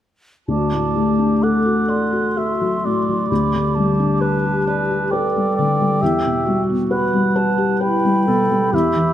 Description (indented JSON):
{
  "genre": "cinematic, emotional film score for orchestra",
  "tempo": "66 BPM",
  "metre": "3/4",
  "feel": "rubato",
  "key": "unclear",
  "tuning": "A4 = 440 Hz",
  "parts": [
    { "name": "mellow hollow concert flute", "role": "second line", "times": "0.5-9.1 s", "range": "G5 to D6", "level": "-25 LUFS", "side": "equal", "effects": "none" },
    { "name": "mellow oboe", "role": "second line", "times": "0.5-9.1 s", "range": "B4 to G5", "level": "-24 LUFS", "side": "right 3 dB", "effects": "none" },
    { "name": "warm clarinet", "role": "second line", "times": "0.5-9.1 s", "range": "E4 to A4", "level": "-24 LUFS", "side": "equal", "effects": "none" },
    { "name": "felt-muted upright piano", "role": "accompaniment", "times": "0.5-9.1 s", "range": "D2 to D5", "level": "-18 LUFS", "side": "left 2 dB", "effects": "none" }
  ],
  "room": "moderate concert hall reverb, RT60 2.2 s",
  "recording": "none",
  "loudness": "-16 LUFS",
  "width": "side -11 dB against mid",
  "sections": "0.5-9.1 A section",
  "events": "none",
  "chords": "0.5 D; 3.3 G/D; 6.0 Em",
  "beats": "| 0.48 1.43 2.37 | 3.30 4.21 5.11 | 6.01 6.90 7.81 | 8.73"
}